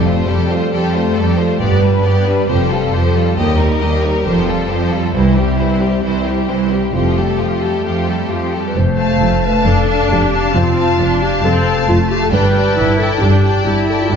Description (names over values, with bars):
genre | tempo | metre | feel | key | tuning
cinematic, heroic adventure film score | 135 BPM | 4/4 | straight | F lydian | A4 = 437 Hz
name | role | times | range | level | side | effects
clear symphonic violin section | melody | 0.0-14.2 s | G4 to A5 | -25 LUFS | left 4 dB | none
clear studio violin section | second line | 0.0-14.2 s | C4 to A5 | -22 LUFS | left 3 dB | none
clear symphonic viola section | accompaniment | 0.0-14.2 s | E3 to E4 | -20 LUFS | equal | none
dark French horn section | sustained chords | 0.0-8.5 s | G3 to B4 | -20 LUFS | left 3 dB | none
rich symphonic cello section | bass | 0.0-14.2 s | C2 to G2 | -18 LUFS | right 2 dB | none
rich symphonic double bass section | bass | 0.0-14.2 s | F1 to Eb2 | -18 LUFS | equal | none
timpani | percussion | 0.0-0.5 s | F2 | -22 LUFS | left 3 dB | none
dark clarinet | second line | 8.3-14.2 s | F4 to C5 | -18 LUFS | left 1 dB | none
room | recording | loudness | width
wet scoring stage reverb, RT60 1.6 s | heard from further back in the room, nothing above 7.7 kHz | -12 LUFS | side -7 dB against mid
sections
0.0-8.8 A section; 8.8-14.2 B section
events
build-up 0.0-8.8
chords
0.0 Fadd9; 1.6 G; 2.5 Fadd9; 3.4 Eb; 4.3 Fadd9; 5.2 C; 6.9 Fadd9; 8.8 F; 12.3 Gsus2